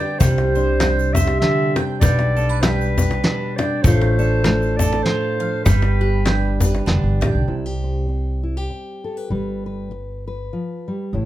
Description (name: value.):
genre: acoustic folk duo or small band.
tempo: 99 BPM.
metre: 3/4.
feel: swing 57% on 8ths.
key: unclear.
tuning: A4 = 441 Hz.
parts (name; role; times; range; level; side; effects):
mellow clarinet; melody; 0.0-6.8 s; B4 to E5; -24 LUFS; right 1 dB; none.
fingerpicked steel-string acoustic guitar; accompaniment; 0.0-11.3 s; A2 to C5; -23 LUFS; left 1 dB; none.
bowl-back mandolin; arpeggios; 0.0-7.5 s; G3 to G5; -28 LUFS; right 8 dB; none.
upright bass; bass; 0.2-11.3 s; F1 to C2; -21 LUFS; equal; none.
soft brush drum kit; drums; 0.2-7.0 s; hi-hat, kick drum, snare drum; -20 LUFS; equal; none.
cajon; percussion; 0.2-7.3 s; none; -21 LUFS; left 2 dB; none.
egg shaker; percussion; 0.2-6.7 s; none; -34 LUFS; left 6 dB; none.
room: light reverb.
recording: close, detailed microphones.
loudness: -16 LUFS.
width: side -14 dB against mid.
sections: 0.0-7.5 A section; 7.5-11.3 B section.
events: none.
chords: 0.2 Csus2; 2.0 G/B; 3.8 Dm/A; 5.7 G; 7.5 C; 9.3 G.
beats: | 0.20 0.81 1.41 | 2.02 2.62 3.23 | 3.84 4.44 5.05 | 5.66 6.26 6.87 | 7.48 8.09 8.70 | 9.31 9.92 10.53 | 11.14.